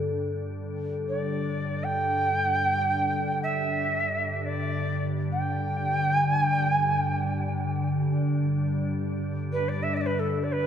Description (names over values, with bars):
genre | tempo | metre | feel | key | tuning
world meditative, free-time meditation music | free time | none | none | unclear | A4 = 436 Hz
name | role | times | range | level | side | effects
soft additive organ-like pad | drone | 0.0-10.7 s | G2 to D3 | -28 LUFS | left 1 dB | ensemble chorus, built-in reverb
bronze singing bowl | texture | 0.0-6.6 s | A4 | -38 LUFS | left 3 dB | none
Native American-style cedar flute | melody | 1.1-10.7 s | A4 to G5 | -26 LUFS | right 2 dB | none
room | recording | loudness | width
wet church reverb, RT60 2.7 s | none | -24 LUFS | side -8 dB against mid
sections
0.0-10.7 A section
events
none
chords
none